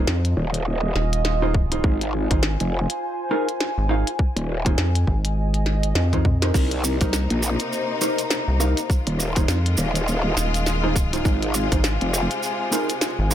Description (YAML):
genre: glitch hop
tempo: 102 BPM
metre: 4/4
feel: swing 59% on 16ths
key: F minor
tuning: A4 = 440 Hz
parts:
  - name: mellow electric guitar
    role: stabs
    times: 0.0-13.3 s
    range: Eb4 to F5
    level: -28 LUFS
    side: right 2 dB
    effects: sidechain pumping, tape echo
  - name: growl bass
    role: bass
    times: 0.0-12.3 s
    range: Eb1 to C2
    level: -23 LUFS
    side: equal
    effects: chorus, overdrive
  - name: warbly tape-like pad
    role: texture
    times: 0.2-13.3 s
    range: Eb4 to Bb5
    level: -29 LUFS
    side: equal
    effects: chorus, built-in reverb, sidechain pumping
  - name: rubbery square bass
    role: bass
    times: 0.1-13.3 s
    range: Eb1 to F2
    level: -21 LUFS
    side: equal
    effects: none
  - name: glitchy drum kit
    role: drums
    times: 0.1-13.3 s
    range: crash cymbal, hi-hat, rim click, snare drum, toms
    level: -27 LUFS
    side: left 1 dB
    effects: none
  - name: electronic kick drum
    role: drums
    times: 1.5-11.8 s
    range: none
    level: -21 LUFS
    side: equal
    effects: overdrive
  - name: clear studio string section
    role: sustained chords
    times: 6.5-13.3 s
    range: C3 to F4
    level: -28 LUFS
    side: left 3 dB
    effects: vintage 12-bit sampler grit, sidechain pumping
  - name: maracas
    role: percussion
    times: 6.6-13.3 s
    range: none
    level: -29 LUFS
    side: right 3 dB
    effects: none
room: digital ambience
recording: none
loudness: -19 LUFS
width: side -11 dB against mid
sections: 0.0-13.3 A section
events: drum fill 6.1-6.5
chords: 0.0 Fm7; 1.8 Ab6; 4.2 Fm7; 6.5 Cm7; 8.9 Fm7; 11.3 Ab6